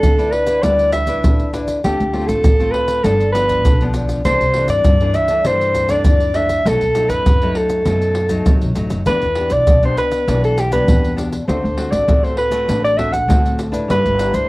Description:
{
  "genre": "samba and choro",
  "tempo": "100 BPM",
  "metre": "4/4",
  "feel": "straight",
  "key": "G major",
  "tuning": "A4 = 439 Hz",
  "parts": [
    { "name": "dark soprano saxophone", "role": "melody", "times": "0.0-14.5 s", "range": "G4 to F#5", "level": "-17 LUFS", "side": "equal", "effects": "cassette tape" },
    { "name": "nylon-string guitar", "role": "accompaniment", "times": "0.0-14.5 s", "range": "F#2 to B4", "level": "-22 LUFS", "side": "left 1 dB", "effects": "cassette tape" },
    { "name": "upright bass", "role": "bass", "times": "0.0-14.5 s", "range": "F#1 to G2", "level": "-21 LUFS", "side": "equal", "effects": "none" },
    { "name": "egg shaker, surdo and pandeiro", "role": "percussion", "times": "0.0-14.5 s", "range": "none", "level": "-18 LUFS", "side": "equal", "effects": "none" }
  ],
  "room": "moderate small room reverb, RT60 0.5 s",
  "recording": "home recording on cassette",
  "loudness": "-13 LUFS",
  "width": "side -20 dB against mid",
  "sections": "0.0-14.5 A section",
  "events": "none",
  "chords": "0.0 G6; 1.8 Dm7; 3.0 G7; 4.2 C69; 6.7 B7; 9.1 Em7; 11.5 D7; 13.9 G6"
}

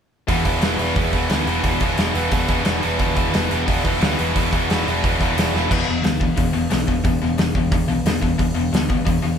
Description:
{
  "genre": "punk rock",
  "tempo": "178 BPM",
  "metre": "4/4",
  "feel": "straight",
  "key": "unclear",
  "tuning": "A4 = 439 Hz",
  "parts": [
    { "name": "tight distorted guitar", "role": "riff", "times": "0.3-9.4 s", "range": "E2 to E3", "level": "-21 LUFS", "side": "left 4 dB", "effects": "distortion" },
    { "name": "tight distorted guitar", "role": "riff", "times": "0.3-5.7 s", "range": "E2 to E3", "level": "-24 LUFS", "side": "right 10 dB", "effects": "distortion" },
    { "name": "hollow-body short-scale picked electric bass", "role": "bass", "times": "0.3-9.3 s", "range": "E1 to E2", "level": "-26 LUFS", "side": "right 1 dB", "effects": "none" },
    { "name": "loose indie drum kit", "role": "drums", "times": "0.3-9.2 s", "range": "crash cymbal, hi-hat, kick drum, snare drum", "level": "-22 LUFS", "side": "equal", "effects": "none" }
  ],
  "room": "moderate stone room reverb, RT60 1.2 s",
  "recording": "band playing live in one room",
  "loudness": "-17 LUFS",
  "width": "side -8 dB against mid",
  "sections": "0.3-5.7 A section; 5.7-9.4 B section",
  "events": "drum fill 5.5",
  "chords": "0.3 E5"
}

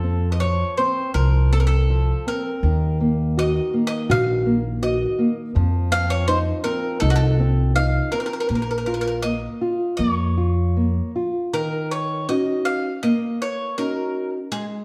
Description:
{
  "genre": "fado-style ballad",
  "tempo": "81 BPM",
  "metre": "4/4",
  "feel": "rubato",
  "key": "Bb harmonic minor, Eb minor from 11.5 s",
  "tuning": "A4 = 441 Hz",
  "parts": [
    { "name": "bowl-back mandolin", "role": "melody", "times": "0.0-14.6 s", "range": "Gb4 to F5", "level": "-28 LUFS", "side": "equal", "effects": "none" },
    { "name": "nylon-string guitar", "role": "accompaniment", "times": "0.0-14.8 s", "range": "Eb3 to Gb4", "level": "-26 LUFS", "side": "equal", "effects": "none" },
    { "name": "upright bass", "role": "bass", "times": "0.0-11.0 s", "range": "Bb1 to F2", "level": "-22 LUFS", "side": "equal", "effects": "none" }
  ],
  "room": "moderate recital hall reverb, RT60 1.3 s",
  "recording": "dark, warm production",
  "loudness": "-21 LUFS",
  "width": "mono",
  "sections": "0.0-11.5 A section; 11.5-14.8 B section",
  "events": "none",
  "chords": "0.0 F; 2.6 Ebm; 5.6 F5; 8.5 Bbm; 11.5 Ebm7"
}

